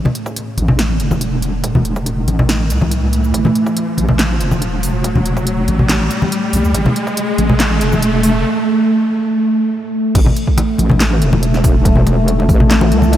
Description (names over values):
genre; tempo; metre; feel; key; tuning
deep dubstep; 141 BPM; 4/4; half-time; A minor; A4 = 442 Hz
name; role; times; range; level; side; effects
deep dark ambient pad; sustained chords; 0.0-13.2 s; A3; -18 LUFS; right 1 dB; chorus, built-in reverb
wobble bass; bass; 0.0-13.2 s; E1 to D2; -16 LUFS; equal; chorus
riser; sound effects; 0.2-8.4 s; none; -23 LUFS; equal; none
congas; percussion; 0.1-13.2 s; none; -19 LUFS; left 1 dB; dub echo
deep house drum kit; drums; 0.2-13.2 s; crash cymbal, handclaps, hi-hat, shaker, snare drum; -22 LUFS; equal; none
electronic kick drum; drums; 0.3-12.6 s; none; -15 LUFS; equal; high-pass filter on kick, high-pass filter on room
room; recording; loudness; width
moderate huge ambient reverb, RT60 5.1 s; dreamy mix soaked in reverb; -12 LUFS; side -12 dB against mid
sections
0.0-10.2 A section; 10.2-13.2 B section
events
build-up 0.0-10.2; filter sweep on ambient pad 0.0-10.2; riser 0.2-8.4; drop 10.2-13.2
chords
0.0 A5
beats
0.36 0.79 1.22 | 1.64 2.07 2.49 2.92 | 3.34 3.77 4.19 4.62 | 5.04 5.47 5.90 6.32 | 6.75 7.17 7.60 8.02 | 8.45 8.87 9.30 9.72 | 10.15 10.58 11.00 11.43 | 11.85 12.28 12.70 13.13